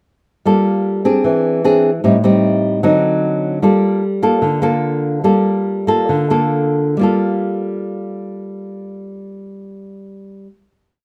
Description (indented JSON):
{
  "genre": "bossa nova",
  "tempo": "129-152 BPM",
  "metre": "4/4",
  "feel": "straight",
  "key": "G minor",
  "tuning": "A4 = 440 Hz",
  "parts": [
    { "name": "nylon-string guitar", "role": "solo", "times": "0.5-10.5 s", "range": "A2 to A4", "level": "-17 LUFS", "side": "equal", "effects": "none" }
  ],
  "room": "light reverb",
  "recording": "none",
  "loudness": "-16 LUFS",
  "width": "mono",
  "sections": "0.5-7.0 A section; 7.0-10.7 final chord",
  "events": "slowing down 3.6-7.0",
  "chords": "0.5 Gm9; 1.2 Eaug7; 2.0 Am7b5; 2.8 D7b9; 3.6 Gm9",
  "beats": "| 0.45 0.85 1.25 1.64 | 2.04 2.44 2.83 3.23 | 3.62 4.02 4.42 4.83 | 5.24 5.66 6.09 6.53 | 6.98 7.45 7.91 8.37 | 8.84 9.30 9.77 10.23"
}